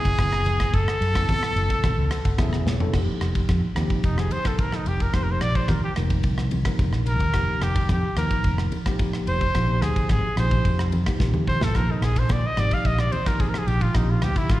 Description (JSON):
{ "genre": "electric jazz fusion", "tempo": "109 BPM", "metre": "4/4", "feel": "straight", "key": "unclear", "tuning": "A4 = 441 Hz", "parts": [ { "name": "clear trumpet", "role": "melody", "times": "0.0-14.6 s", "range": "Eb4 to F5", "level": "-27 LUFS", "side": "equal", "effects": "slapback echo" }, { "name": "tine electric piano", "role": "accompaniment", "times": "0.0-14.6 s", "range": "C3 to A5", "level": "-29 LUFS", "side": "equal", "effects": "fast stereo tremolo, slapback echo" }, { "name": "fretless electric bass", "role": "bass", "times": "0.1-14.6 s", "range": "Fb1 to Bb2", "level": "-24 LUFS", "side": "equal", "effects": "none" }, { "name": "modern studio drum kit", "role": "drums", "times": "0.1-14.6 s", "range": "crash cymbal, kick drum, ride cymbal, rim click, snare drum, toms", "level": "-25 LUFS", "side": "equal", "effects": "none" }, { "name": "congas", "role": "percussion", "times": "0.5-14.6 s", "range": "none", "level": "-32 LUFS", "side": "equal", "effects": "none" } ], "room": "light reverb", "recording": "live gig heard through the venue's PA, recital hall reverb", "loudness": "-20 LUFS", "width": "side -15 dB against mid", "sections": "0.0-2.9 A section; 2.9-14.6 B section", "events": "tine electric piano fill 1.8-2.9; drum fill 2.7, 11.1-11.7; trumpet solo 2.9-14.6", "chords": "0.0 Gbm11; 2.9 F9sus4; 9.5 Bbsus4" }